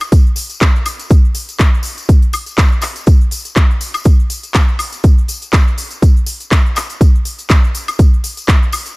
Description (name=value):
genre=nu-disco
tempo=122 BPM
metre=4/4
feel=swing 55% on 16ths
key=none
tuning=none
part: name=house drum kit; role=drums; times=0.0-9.0 s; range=cabasa, handclaps, hi-hat, woodblock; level=-20 LUFS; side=left 1 dB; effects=none
part: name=tambourine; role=percussion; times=0.0-8.9 s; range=none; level=-28 LUFS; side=left 3 dB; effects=none
part: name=electronic kick drum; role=drums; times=0.1-8.6 s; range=none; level=-9 LUFS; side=equal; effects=none
room=little or no reverb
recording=none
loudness=-10 LUFS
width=side -25 dB against mid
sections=0.0-9.0 A section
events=none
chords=none